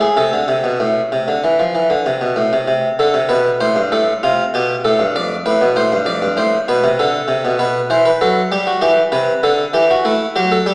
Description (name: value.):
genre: classical, baroque-style two-part invention for harpsichord.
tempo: 98 BPM.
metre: 4/4.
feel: straight.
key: A minor.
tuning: A4 = 440 Hz.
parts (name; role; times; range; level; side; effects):
harpsichord; solo; 0.0-10.7 s; F2 to D5; -13 LUFS; equal; none.
room: wet recital hall reverb, RT60 1.7 s.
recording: heard from further back in the room, small speaker sound.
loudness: -13 LUFS.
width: side -26 dB against mid.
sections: 0.0-2.7 A section; 2.7-10.7 B section.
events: none.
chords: 0.2 Am; 2.7 Am/C; 3.9 F/A; 5.2 Dm/F; 6.4 Am; 7.6 Em/B; 8.8 C; 10.1 A5.